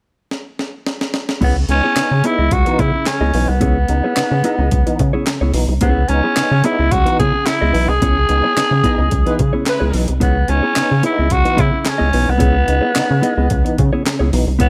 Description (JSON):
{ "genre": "funk", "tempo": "109 BPM", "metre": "4/4", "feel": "straight", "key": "C# minor", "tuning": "A4 = 440 Hz", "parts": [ { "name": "breakbeat sampler-style drum kit", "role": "drums", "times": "0.3-14.7 s", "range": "crash cymbal, handclaps, hi-hat, kick drum, snare drum", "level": "-22 LUFS", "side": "equal", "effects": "none" }, { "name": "growling tenor saxophone", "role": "melody", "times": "1.4-14.7 s", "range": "B3 to G#4", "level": "-20 LUFS", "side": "equal", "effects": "none" }, { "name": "mellow electric guitar", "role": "accompaniment", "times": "1.4-14.7 s", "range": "B3 to D#5", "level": "-24 LUFS", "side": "equal", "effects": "none" }, { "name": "tonewheel organ", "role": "stabs", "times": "1.4-14.7 s", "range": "C#3 to D#4", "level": "-25 LUFS", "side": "equal", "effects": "overdrive, chorus vibrato, slow rotary speaker" }, { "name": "rubbery square bass", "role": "bass", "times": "1.4-14.7 s", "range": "B1 to C#3", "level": "-19 LUFS", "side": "equal", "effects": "none" }, { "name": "warm horn section", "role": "second line", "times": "9.3-10.1 s", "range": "G#3 to B4", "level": "-25 LUFS", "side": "equal", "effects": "none" } ], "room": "light reverb", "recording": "none", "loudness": "-16 LUFS", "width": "mono", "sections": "0.0-1.4 A section; 1.4-14.7 B section", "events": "drum fill 0.3-1.4; band accent 8.0-10.2", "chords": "0.0 N.C.; 1.4 C#m7" }